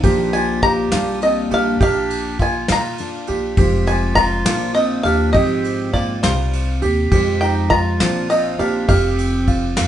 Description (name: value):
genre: acoustic folk duo or small band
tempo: 68 BPM (dotted quarters)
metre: 6/8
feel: straight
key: F dorian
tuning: A4 = 441 Hz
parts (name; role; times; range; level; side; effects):
- fingerpicked steel-string acoustic guitar; accompaniment; 0.0-9.9 s; F2 to G4; -24 LUFS; left 2 dB; none
- warm upright piano; arpeggios; 0.0-9.9 s; F4 to G4; -23 LUFS; right 5 dB; none
- upright bass; bass; 0.0-9.9 s; F1 to Bb2; -23 LUFS; left 1 dB; none
- soft brush drum kit; drums; 0.0-9.9 s; kick drum, ride cymbal, snare drum; -22 LUFS; equal; none
- bluegrass banjo; melody; 0.3-9.9 s; C5 to Bb5; -19 LUFS; equal; none
- warm clarinet; second line; 0.3-9.9 s; G3 to G4; -25 LUFS; right 1 dB; none
room: moderate studio reverb, RT60 0.6 s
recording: band playing live in one room, nothing above 11.0 kHz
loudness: -15 LUFS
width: side -11 dB against mid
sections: 0.0-9.9 A section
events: none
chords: 0.0 Bb; 3.6 Fm; 4.5 Bb; 5.3 Fmadd9/Ab; 6.2 Cm; 7.1 Fmadd9; 8.0 Bbadd9; 8.9 F5